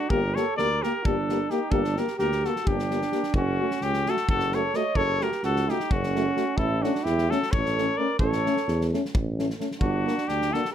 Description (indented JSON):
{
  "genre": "balkan folk, Balkan brass band",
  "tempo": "260 BPM (eighths)",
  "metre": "7/8",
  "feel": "straight",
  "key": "unclear",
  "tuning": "A4 = 443 Hz",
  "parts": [
    { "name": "cornet with straight mute", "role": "melody", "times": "0.0-10.7 s", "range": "F#4 to Eb5", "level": "-28 LUFS", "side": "left 4 dB", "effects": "none" },
    { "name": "breathy flugelhorn", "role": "second line", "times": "0.0-10.7 s", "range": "C#4 to C#5", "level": "-30 LUFS", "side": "right 7 dB", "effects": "none" },
    { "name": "warm euphonium", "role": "accompaniment", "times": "0.1-10.6 s", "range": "C#4 to G4", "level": "-31 LUFS", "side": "left 7 dB", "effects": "none" },
    { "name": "warm euphonium", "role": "accompaniment", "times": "0.1-10.6 s", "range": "A3 to Bb3", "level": "-33 LUFS", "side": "right 5 dB", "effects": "none" },
    { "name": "mellow tuba", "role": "bass", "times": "0.1-10.5 s", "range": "F#1 to E2", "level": "-28 LUFS", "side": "equal", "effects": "none" },
    { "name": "natural country drum kit", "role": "percussion", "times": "0.1-10.7 s", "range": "kick drum, snare drum", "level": "-30 LUFS", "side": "equal", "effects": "none" }
  ],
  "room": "moderate studio reverb, RT60 0.6 s",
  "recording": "none",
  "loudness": "-23 LUFS",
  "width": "side -10 dB against mid",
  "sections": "0.0-3.3 A section; 3.3-10.7 B section",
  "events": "none",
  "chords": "0.1 Gm; 3.3 F#m; 6.6 A; 9.8 Gm",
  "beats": "| 0.10 0.33 0.56 0.80 1.03 1.26 1.49 | 1.72 1.95 2.18 2.41 2.64 2.88 3.11 | 3.34 3.57 3.80 4.03 4.26 4.49 4.72 | 4.95 5.18 5.42 5.65 5.88 6.11 6.34 | 6.57 6.80 7.03 7.26 7.50 7.73 7.96 | 8.19 8.42 8.65 8.88 9.11 9.35 9.58 | 9.81 10.04 10.27 10.50 10.73"
}